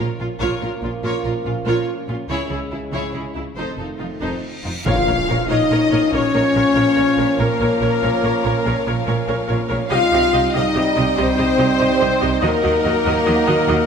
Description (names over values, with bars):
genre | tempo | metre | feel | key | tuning
cinematic, epic orchestral film score | 95 BPM (dotted quarters) | 12/8 | straight | Bb minor from 4.9 s | A4 = 441 Hz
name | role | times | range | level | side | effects
clear symphonic violin section | melody | 0.0-13.9 s | E4 to F5 | -27 LUFS | left 4 dB | none
rich studio violin section | second line | 0.0-13.9 s | C#4 to F5 | -29 LUFS | left 2 dB | none
clear symphonic viola section | accompaniment | 0.0-13.8 s | Eb4 to Eb5 | -26 LUFS | right 2 dB | none
clear trombone section | sustained chords | 0.0-13.9 s | C#3 to Eb4 | -27 LUFS | right 4 dB | none
dark French horn section | sustained chords | 0.0-13.9 s | Bb3 to F4 | -22 LUFS | left 3 dB | none
clear symphonic double bass section | bass | 0.0-13.8 s | F1 to Eb2 | -26 LUFS | right 3 dB | none
warm studio cello section | bass | 0.0-13.8 s | F2 to Eb3 | -26 LUFS | right 1 dB | none
reverse cymbal and impact | sound effects | 4.4-7.4 s | none | -32 LUFS | left 1 dB | none
large flute ensemble | second line | 4.9-13.9 s | Bb4 to F5 | -26 LUFS | left 1 dB | none
clear symphonic string section | sustained chords | 4.9-13.9 s | G3 to G5 | -29 LUFS | equal | none
warm trumpet section | stabs | 4.9-13.9 s | Bb4 to F5 | -24 LUFS | right 1 dB | none
timpani | percussion | 4.9-5.5 s | Bb2 | -29 LUFS | left 1 dB | none
room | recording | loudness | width
wet scoring stage reverb, RT60 1.6 s | none | -16 LUFS | side -6 dB against mid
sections
0.0-4.9 A section; 4.9-13.9 B section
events
reverse cymbal 4.4-4.9; impact 4.9-7.4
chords
0.0 A#m; 2.3 C#m; 3.6 F7; 4.9 Bbm; 9.9 Cm; 12.4 Ebm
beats
0.41 1.04 1.66 | 2.29 2.93 3.57 4.22 | 4.86 5.50 6.13 6.76 | 7.39 8.02 8.65 9.28 | 9.91 10.54 11.17 11.80 | 12.43 13.05 13.68